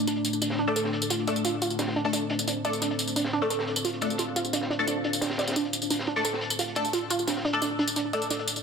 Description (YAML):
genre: dark technical drum and bass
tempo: 175 BPM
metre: 4/4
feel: straight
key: D minor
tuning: A4 = 441 Hz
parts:
  - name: deep dark ambient pad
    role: sustained chords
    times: 0.0-8.6 s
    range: A3 to A5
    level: -32 LUFS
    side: left 1 dB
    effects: chorus, built-in reverb
  - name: warbly dusty pluck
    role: arpeggios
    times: 0.1-8.4 s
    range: D4 to D5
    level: -30 LUFS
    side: right 3 dB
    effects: chorus, vintage 12-bit sampler grit, ping-pong delay
  - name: crunchy breakbeat drum kit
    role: drums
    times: 0.1-8.6 s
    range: hi-hat, snare drum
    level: -35 LUFS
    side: equal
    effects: high-pass filter on hats, low-pass filter on hats, high-pass filter on snare, low-pass filter on snare, high-pass filter on room, low-pass filter on room
  - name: tambourine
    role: drums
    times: 0.1-8.6 s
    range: none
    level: -31 LUFS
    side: left 1 dB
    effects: overdrive
  - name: band-passed chord stab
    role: stabs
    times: 0.7-8.2 s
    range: A3 to A4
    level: -31 LUFS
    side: left 2 dB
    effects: phaser, ensemble chorus, ping-pong delay
room: moderate plate reverb, RT60 1.6 s, small room ambience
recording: dense, heavily limited modern master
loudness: -25 LUFS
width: side -6 dB against mid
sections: 0.0-8.6 A section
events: none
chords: 0.0 D5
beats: | 0.07 0.42 0.76 1.10 | 1.45 1.79 2.13 2.48 | 2.82 3.16 3.50 3.85 | 4.19 4.53 4.88 5.22 | 5.56 5.90 6.25 6.59 | 6.93 7.28 7.62 7.96 | 8.30